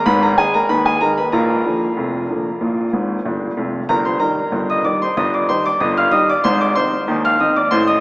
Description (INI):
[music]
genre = ragtime piano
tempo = 94 BPM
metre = 2/4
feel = straight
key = Eb major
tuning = A4 = 435 Hz
[part]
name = warm baby grand piano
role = solo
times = 0.0-8.0 s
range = F1 to F6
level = -14 LUFS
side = equal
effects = none
[sound]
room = wet cathedral reverb, RT60 5.0 s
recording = recorded in a church or concert hall, small speaker sound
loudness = -15 LUFS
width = side -23 dB against mid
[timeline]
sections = 0.0-8.0 A section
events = grand piano fill 2.9-3.9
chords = 0.1 Abm; 1.3 Bb; 3.9 Eb/G; 6.4 Ab